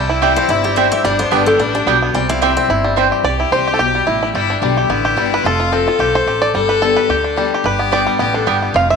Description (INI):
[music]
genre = bluegrass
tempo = 218 BPM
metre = 4/4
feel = swing 54% on 8ths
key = C major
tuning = A4 = 440 Hz
[part]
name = bluegrass banjo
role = melody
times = 0.0-9.0 s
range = G3 to F5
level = -17 LUFS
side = right 2 dB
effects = none
[part]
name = picked steel-string acoustic guitar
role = melody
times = 0.0-2.9 s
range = G4 to G5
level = -20 LUFS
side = left 1 dB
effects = none
[part]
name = clear fiddle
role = second line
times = 0.0-9.0 s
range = C4 to A4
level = -19 LUFS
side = left 6 dB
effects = none
[part]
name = picked acoustic archtop guitar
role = accompaniment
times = 0.0-9.0 s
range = E2 to G4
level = -21 LUFS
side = left 10 dB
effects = none
[part]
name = upright bass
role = bass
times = 0.0-9.0 s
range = F1 to D2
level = -22 LUFS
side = right 2 dB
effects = none
[part]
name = mandolin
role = stabs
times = 0.2-3.1, 7.9-8.6 s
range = B3 to G5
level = -19 LUFS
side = right 12 dB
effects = none
[sound]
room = wet echo chamber reverb, RT60 1.6 s, small room reverb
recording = 1960s-style stereo with parts hard left and right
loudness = -13 LUFS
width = side -5 dB against mid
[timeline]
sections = 0.0-3.2 A section; 3.2-9.0 B section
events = five-string banjo solo 3.2-9.0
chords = 0.0 C; 1.0 G; 2.1 C; 4.3 G; 5.4 F; 6.5 Gadd9; 7.7 G